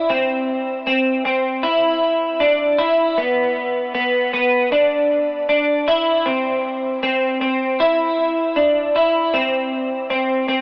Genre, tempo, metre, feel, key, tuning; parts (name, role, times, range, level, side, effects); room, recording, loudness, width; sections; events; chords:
dream pop; 78 BPM; 4/4; straight; A4 = 440 Hz
semi-hollow electric guitar; solo; 0.0-10.6 s; B3 to E4; -16 LUFS; equal; analog chorus, analog delay
light reverb; dry, gritty hardware recording, AM radio sound; -16 LUFS; side -33 dB against mid
0.0-10.6 A section